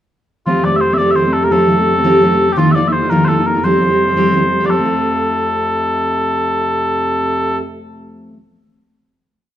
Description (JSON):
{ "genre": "celtic folk, Celtic jig", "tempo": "113 BPM (dotted quarters)", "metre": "6/8", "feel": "straight", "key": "F mixolydian", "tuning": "A4 = 440 Hz", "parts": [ { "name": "mellow small bagpipes", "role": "melody", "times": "0.5-7.6 s", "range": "F4 to E5", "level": "-16 LUFS", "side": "left 1 dB", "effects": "none" }, { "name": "fingerpicked steel-string acoustic guitar", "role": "accompaniment", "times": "0.5-8.4 s", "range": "Eb3 to G4", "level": "-15 LUFS", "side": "equal", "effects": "none" }, { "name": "pedal harmonium", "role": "drone", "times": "0.5-7.6 s", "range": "F2 to C3", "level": "-22 LUFS", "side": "right 2 dB", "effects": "none" } ], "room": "moderate recital hall reverb, RT60 1.4 s", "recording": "minimal, uncompressed stereo recording", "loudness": "-12 LUFS", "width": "side -11 dB against mid", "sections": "0.5-4.7 A section; 4.7-6.8 final chord", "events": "none", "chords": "0.5 Fadd9; 2.6 Ebsus2; 3.6 Fsus2; 4.7 F" }